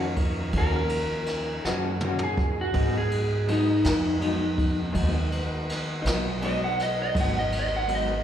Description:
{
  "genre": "slow blues",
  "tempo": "54 BPM (dotted quarters)",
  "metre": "12/8",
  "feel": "straight",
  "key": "unclear",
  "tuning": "A4 = 440 Hz",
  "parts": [
    { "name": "electric slide guitar", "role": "melody", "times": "0.0-8.2 s", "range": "Eb4 to Gb5", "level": "-27 LUFS", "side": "equal", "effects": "slapback echo" },
    { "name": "electric guitar through a small old amp", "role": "accompaniment", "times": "0.0-8.1 s", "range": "Ab2 to Gb4", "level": "-31 LUFS", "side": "left 4 dB", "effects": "tremolo, slapback echo" },
    { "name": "tonewheel organ", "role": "sustained chords", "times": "0.0-8.2 s", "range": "Eb3 to Gb4", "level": "-36 LUFS", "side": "equal", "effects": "slow rotary speaker" },
    { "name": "upright bass", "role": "bass", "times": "0.0-8.2 s", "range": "Ab1 to Ab2", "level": "-29 LUFS", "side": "right 1 dB", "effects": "none" },
    { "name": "jazz brush drum kit", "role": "drums", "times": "0.2-8.1 s", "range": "kick drum, ride cymbal, snare drum, toms", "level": "-30 LUFS", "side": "right 1 dB", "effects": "none" }
  ],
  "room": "light reverb",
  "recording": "live gig heard through the venue's PA, recital hall reverb",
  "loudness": "-23 LUFS",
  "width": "side -10 dB against mid",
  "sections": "0.0-8.2 A section",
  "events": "electric slide guitar solo 0.0-8.2; drum fill 1.6-2.7",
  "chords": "0.0 Ebm7; 2.7 Abm7",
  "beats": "0.55 1.65 | 2.75 3.85 4.95 6.05 | 7.15"
}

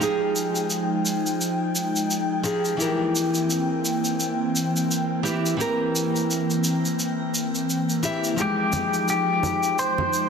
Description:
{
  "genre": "sunset chillout",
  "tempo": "86 BPM",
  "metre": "4/4",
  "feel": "swing 57% on 16ths",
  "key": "F minor",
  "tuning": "A4 = 440 Hz",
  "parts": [
    { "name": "nylon-string guitar", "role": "accompaniment", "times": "0.0-10.3 s", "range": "E3 to E5", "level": "-26 LUFS", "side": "equal", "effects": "auto-pan, vintage 12-bit sampler grit, ping-pong delay, shimmer reverb" },
    { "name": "airy breathy pad", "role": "sustained chords", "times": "0.0-10.3 s", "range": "E3 to G5", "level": "-26 LUFS", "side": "equal", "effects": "chorus, shimmer reverb" },
    { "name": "shaker", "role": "drums", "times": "0.0-10.3 s", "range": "none", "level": "-29 LUFS", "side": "right 1 dB", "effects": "none" },
    { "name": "clean electric guitar", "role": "melody", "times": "8.4-10.3 s", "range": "G4 to C5", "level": "-22 LUFS", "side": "left 2 dB", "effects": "spring reverb, ping-pong delay, shimmer reverb" },
    { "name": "congas", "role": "percussion", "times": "8.7-10.1 s", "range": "none", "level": "-31 LUFS", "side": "right 3 dB", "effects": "none" }
  ],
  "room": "wet plate reverb, RT60 2.7 s",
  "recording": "dense, heavily limited modern master",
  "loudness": "-21 LUFS",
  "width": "side -6 dB against mid",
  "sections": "0.0-10.3 A section",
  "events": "none",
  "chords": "0.0 Fm9; 2.8 C7/E; 8.4 Fm9",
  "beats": "| 0.01 0.71 1.41 2.11 | 2.81 3.50 4.20 4.90 | 5.60 6.29 6.99 7.69 | 8.39 9.09 9.78"
}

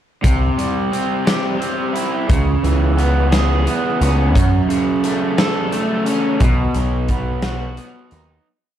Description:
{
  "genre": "indie rock",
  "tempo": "58 BPM (dotted quarters)",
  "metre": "6/8",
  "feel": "straight",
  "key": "unclear",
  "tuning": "A4 = 440 Hz",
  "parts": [
    { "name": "raw garage guitar", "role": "riff", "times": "0.2-8.5 s", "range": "F#2 to A4", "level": "-18 LUFS", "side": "right 1 dB", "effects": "overdrive" },
    { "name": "growling picked electric bass", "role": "bass", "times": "0.2-8.4 s", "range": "B1 to F#2", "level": "-17 LUFS", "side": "equal", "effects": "overdrive" },
    { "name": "big rock drum kit", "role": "drums", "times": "0.2-8.3 s", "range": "hi-hat, kick drum, snare drum", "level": "-21 LUFS", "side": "equal", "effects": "none" }
  ],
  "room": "small room ambience",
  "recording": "dark, warm production, vinyl crackle",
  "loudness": "-15 LUFS",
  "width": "side -10 dB against mid",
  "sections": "0.2-8.5 pre-chorus",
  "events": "fade-out 6.4-8.5",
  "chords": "0.2 C; 2.3 C#m7; 4.4 F#m; 6.4 B",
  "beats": "| 0.24 1.27 | 2.29 3.32 | 4.35 5.38 | 6.41 7.44"
}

